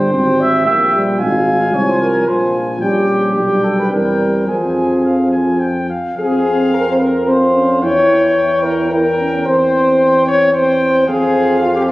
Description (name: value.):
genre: classical, brass quintet.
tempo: 110 BPM.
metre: 3/4.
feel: straight.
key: F minor.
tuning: A4 = 443 Hz.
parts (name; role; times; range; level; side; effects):
clear trumpet; melody; 0.0-11.9 s; F5 to Ab5; -23 LUFS; left 2 dB; none.
mellow flugelhorn; second line; 0.0-11.9 s; F4 to F5; -18 LUFS; right 1 dB; none.
clear French horn; accompaniment; 0.0-11.8 s; C4 to Db5; -17 LUFS; left 1 dB; none.
warm euphonium; accompaniment; 0.0-11.9 s; F3 to E4; -19 LUFS; equal; none.
warm bass trombone; bass; 0.0-11.9 s; Ab1 to F2; -19 LUFS; equal; none.
room: moderate concert hall reverb, RT60 2.0 s.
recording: recorded on a phone in the room, club reverb, compression.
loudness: -12 LUFS.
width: side -18 dB against mid.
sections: 0.0-6.2 A section; 6.2-11.9 A section.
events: none.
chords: 0.0 C5/G; 1.2 Fm/Ab; 2.8 Gdim/Bb; 3.4 G/B; 3.9 C7/E; 4.5 Fm; 7.8 Edim7; 9.5 C/E; 11.1 Fm.